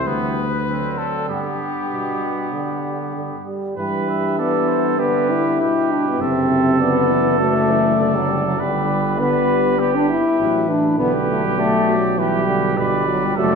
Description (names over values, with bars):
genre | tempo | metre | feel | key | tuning
classical, brass quintet | 100 BPM | 4/4 | straight | G major | A4 = 441 Hz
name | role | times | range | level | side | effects
warm cornet | melody | 0.0-13.6 s | G4 to E5 | -27 LUFS | left 5 dB | none
warm trombone | accompaniment | 0.0-13.6 s | B2 to G3 | -26 LUFS | right 3 dB | none
mellow tuba | bass | 0.0-13.6 s | F#1 to G2 | -25 LUFS | right 2 dB | none
clear trumpet | second line | 0.1-13.6 s | B3 to B4 | -25 LUFS | right 8 dB | none
warm French horn | accompaniment | 0.1-13.6 s | F#3 to E4 | -20 LUFS | left 2 dB | none
room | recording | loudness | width
wet concert hall reverb, RT60 2.1 s | recorded in a church or concert hall | -16 LUFS | side -5 dB against mid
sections
0.0-3.8 A section; 3.8-13.6 B section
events
none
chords
0.1 G/D; 0.7 D7; 1.3 G; 6.2 D7/F#; 8.6 G